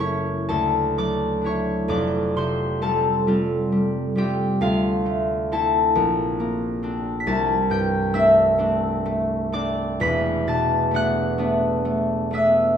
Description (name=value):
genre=classical, solo harp piece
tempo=44 BPM (dotted quarters)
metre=6/8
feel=uneven beats, rubato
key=unclear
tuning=A4 = 440 Hz
part: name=concert harp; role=solo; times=0.0-12.8 s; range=E1 to B6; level=-19 LUFS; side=equal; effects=none
room=wet stone room reverb, RT60 1.2 s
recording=none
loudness=-19 LUFS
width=side -8 dB against mid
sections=0.0-12.8 A section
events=none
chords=0.5 Dadd9; 1.9 Fadd9; 4.6 Dm9; 6.0 Bbadd9; 7.3 C69; 10.0 E9sus4